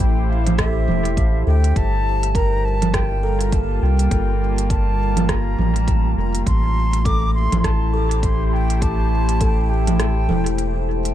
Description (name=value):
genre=ambient dub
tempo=102 BPM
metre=4/4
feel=swing 59% on 16ths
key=unclear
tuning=A4 = 440 Hz
part: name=mellow silver concert flute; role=melody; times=0.0-10.9 s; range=E5 to D6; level=-27 LUFS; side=equal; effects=analog delay
part: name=warbly tape-like pad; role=sustained chords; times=0.0-11.1 s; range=G3 to C5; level=-26 LUFS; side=equal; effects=chorus, built-in reverb
part: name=soft dub sub bass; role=bass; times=0.0-11.1 s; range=E1 to D2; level=-19 LUFS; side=equal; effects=none
part: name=electronic kick drum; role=drums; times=0.0-9.5 s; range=none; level=-22 LUFS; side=equal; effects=overdrive
part: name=organic electronic drum kit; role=drums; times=0.0-11.1 s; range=congas, hi-hat, rim click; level=-24 LUFS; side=right 3 dB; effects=dub echo
part: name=buzzing kalimba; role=arpeggios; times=0.6-11.1 s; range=A4 to Bb4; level=-30 LUFS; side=left 1 dB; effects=analog delay
room=little or no reverb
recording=echo-heavy mix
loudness=-16 LUFS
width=side -12 dB against mid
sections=0.0-11.1 A section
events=break 10.0-11.1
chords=0.0 Am7; 1.8 Gm9; 6.5 Am7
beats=0.00 0.58 1.17 | 1.76 2.35 2.94 3.53 | 4.11 4.70 5.29 5.88 | 6.47 7.05 7.64 8.23 | 8.82 9.41 10.00 10.58